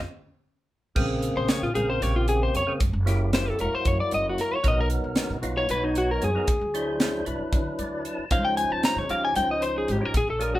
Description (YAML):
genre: electric jazz fusion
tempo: 229 BPM (eighths)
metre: 7/8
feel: straight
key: unclear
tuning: A4 = 438 Hz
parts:
  - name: percussive tonewheel organ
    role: accompaniment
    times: 1.0-10.6 s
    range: Db3 to A5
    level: -30 LUFS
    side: right 1 dB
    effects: slow rotary speaker, overdrive
  - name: upright bass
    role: bass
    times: 1.0-10.6 s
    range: Fb1 to D3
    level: -29 LUFS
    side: equal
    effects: none
  - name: crisp fusion drum kit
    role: drums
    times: 1.0-10.5 s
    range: crash cymbal, hi-hat, kick drum, snare drum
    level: -26 LUFS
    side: equal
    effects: none
  - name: lightly driven lead guitar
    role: melody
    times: 1.4-10.6 s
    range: D#4 to Bb5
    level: -25 LUFS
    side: left 2 dB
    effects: none
room: moderate studio reverb, RT60 0.5 s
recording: band playing live in one room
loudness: -22 LUFS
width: side -15 dB against mid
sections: 1.0-10.6 A section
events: drum fill 0.0-1.0; band accent 0.0-1.0; lead electric guitar solo 1.0-10.6; tonewheel organ fill 7.5-8.3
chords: 0.0 N.C.; 1.0 Bbm9; 2.8 Gb7b9; 4.6 Bmaj7; 6.5 D9; 8.3 Dbmaj9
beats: 0.17 0.43 0.70 | 0.96 1.23 1.49 1.75 2.02 2.28 2.54 | 2.81 3.07 3.33 3.59 3.86 4.12 4.38 | 4.64 4.91 5.17 5.43 5.69 5.96 6.22 | 6.48 6.74 7.00 7.26 7.53 7.79 8.05 | 8.31 8.57 8.84 9.10 9.36 9.62 9.88 | 10.15 10.41